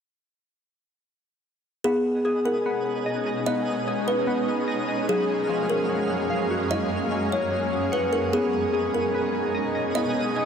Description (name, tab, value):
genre	hip hop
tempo	148 BPM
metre	4/4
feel	half-time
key	unclear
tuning	A4 = 439 Hz
part	kalimba	melody	1.8-10.5 s	G#4 to D#5	-26 LUFS	left 2 dB	tape echo
part	shimmering ambient pad	sustained chords	2.5-10.5 s	F#2 to G#4	-27 LUFS	right 2 dB	chorus, built-in reverb
part	glassy digital keys	arpeggios	1.8-10.5 s	E#3 to F#5	-29 LUFS	equal	chorus, tape echo
part	twinkling granular texture	texture	2.2-10.5 s	F#3 to E#5	-33 LUFS	equal	built-in reverb
room	moderate shimmer reverb, RT60 5.4 s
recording	dry, gritty hardware recording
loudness	-22 LUFS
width	side -7 dB against mid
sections	1.8-10.5 A section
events	none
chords	1.8 B6; 5.1 F#maj7; 8.3 B6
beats	| 1.84 2.25 2.66 3.06 | 3.47 3.87 4.28 4.68 | 5.09 5.49 5.90 6.30 | 6.71 7.12 7.52 7.93 | 8.33 8.74 9.14 9.55 | 9.95 10.36